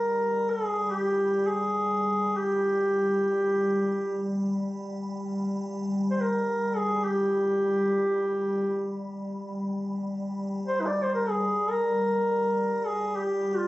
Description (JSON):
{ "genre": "caucasian folk, Caucasian lament", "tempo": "free time", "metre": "none", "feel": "none", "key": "G phrygian", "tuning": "A4 = 441 Hz", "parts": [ { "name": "warm duduk", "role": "melody", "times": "0.0-13.7 s", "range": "Eb4 to D5", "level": "-25 LUFS", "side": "equal", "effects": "none" }, { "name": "icy glass pad", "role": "drone", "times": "0.0-13.7 s", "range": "G3", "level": "-30 LUFS", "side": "left 1 dB", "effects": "chorus, built-in reverb" } ], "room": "moderate recital hall reverb, RT60 1.5 s", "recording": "recorded on a phone in the room, club reverb", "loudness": "-25 LUFS", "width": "side -18 dB against mid", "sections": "0.0-9.6 A section; 9.6-13.7 A section", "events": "none", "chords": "none", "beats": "free time" }